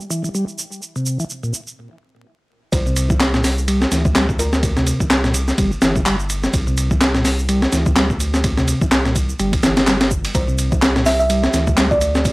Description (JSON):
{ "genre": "breakbeat, breaks", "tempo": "126 BPM", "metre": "4/4", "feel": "swing 57% on 16ths", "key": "unclear", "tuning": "A4 = 439 Hz", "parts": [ { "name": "electronic shaker and handclaps", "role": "drums", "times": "0.0-12.3 s", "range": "none", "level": "-25 LUFS", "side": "equal", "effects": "none" }, { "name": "mellow tonewheel organ", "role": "riff", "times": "0.1-11.9 s", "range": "Bb2 to G3", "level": "-22 LUFS", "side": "equal", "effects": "slow rotary speaker, vintage 12-bit sampler grit, low-pass filter, analog delay" }, { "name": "kalimba", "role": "melody", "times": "2.7-4.9, 10.3-12.2 s", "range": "Bb4 to E5", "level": "-22 LUFS", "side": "right 1 dB", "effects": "AM radio sound, analog delay" }, { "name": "saturated sub bass", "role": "bass", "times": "2.7-12.3 s", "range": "G1 to D2", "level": "-21 LUFS", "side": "equal", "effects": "tube saturation" }, { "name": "breakbeat sampler-style drum kit", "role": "drums", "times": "2.7-12.3 s", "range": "hi-hat, kick drum, ride cymbal, snare drum", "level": "-17 LUFS", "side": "equal", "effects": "none" } ], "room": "light reverb", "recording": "dry, gritty hardware recording, transformer saturation, vinyl crackle", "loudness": "-15 LUFS", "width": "side -22 dB against mid", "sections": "0.0-2.7 A section; 2.7-12.3 B section", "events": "break 1.8-2.7; drop 2.7-12.3", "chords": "0.0 C7; 2.7 C5", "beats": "0.34 | 0.82 1.30 1.77 2.25 | 2.73 3.20 3.68 4.16 | 4.63 5.11 5.58 6.06 | 6.54 7.01 7.49 7.96 | 8.44 8.92 9.39 9.87 | 10.35 10.82 11.30 11.77 | 12.25" }